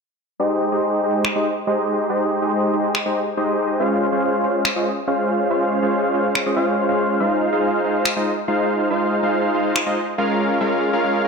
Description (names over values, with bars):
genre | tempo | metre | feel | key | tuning
future bass | 141 BPM | 4/4 | half-time | Ab major | A4 = 440 Hz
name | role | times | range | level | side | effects
supersaw chords | riff | 0.4-11.3 s | Ab3 to F5 | -18 LUFS | equal | low-pass filter, ping-pong delay
electronic finger snaps | drums | 1.2-9.8 s | none | -23 LUFS | equal | overdrive, low-pass filter on snare
room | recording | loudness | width
moderate lush hall reverb, RT60 1.9 s | none | -18 LUFS | side -4 dB against mid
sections
0.4-11.3 A section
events
filter sweep on supersaw synth 0.4-11.3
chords
0.4 Abmaj7; 3.8 Dbmaj7; 7.2 Fm7; 10.4 Bbm7